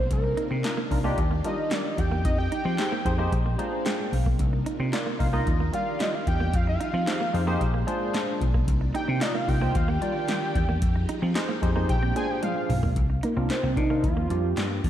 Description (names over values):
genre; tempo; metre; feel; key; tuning
early-eighties boogie funk; 112 BPM; 4/4; straight; C minor; A4 = 438 Hz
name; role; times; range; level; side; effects
fat analog lead; melody; 0.0-14.8 s; Bb3 to Ab5; -30 LUFS; right 1 dB; chorus
string machine, full ensemble; sustained chords; 0.0-13.0 s; C3 to Ab4; -35 LUFS; equal; ensemble chorus
semi-hollow electric guitar; riff; 0.0-14.7 s; G3 to Eb4; -34 LUFS; right 4 dB; analog chorus
vintage slap bass; bass; 0.0-14.9 s; Bb1 to F3; -26 LUFS; equal; none
electro analog drum machine; drums; 0.1-14.9 s; handclaps, hi-hat, kick drum, snare drum, toms; -28 LUFS; equal; none
barky tine electric piano; accompaniment; 0.6-14.9 s; Bb3 to Bb5; -32 LUFS; left 1 dB; analog chorus
room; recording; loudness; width
moderate lush hall reverb, RT60 1.8 s, digital ambience; dreamy mix soaked in reverb; -23 LUFS; side -11 dB against mid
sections
0.0-13.0 A section; 13.0-14.9 B section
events
analog synth lead solo 0.0-13.0; tine electric piano fill 3.3-4.4; drum fill 12.4-13.0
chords
0.1 Cm11; 1.2 Ebmaj9; 2.3 Fm9; 3.3 Bb7; 4.4 Cm11; 5.5 Ebmaj9; 6.5 Fm9; 7.6 Bb7; 8.7 Cm11; 9.8 Ebmaj9; 10.8 Fm9; 11.9 Bb7; 13.0 Cm11; 14.0 Ebmaj9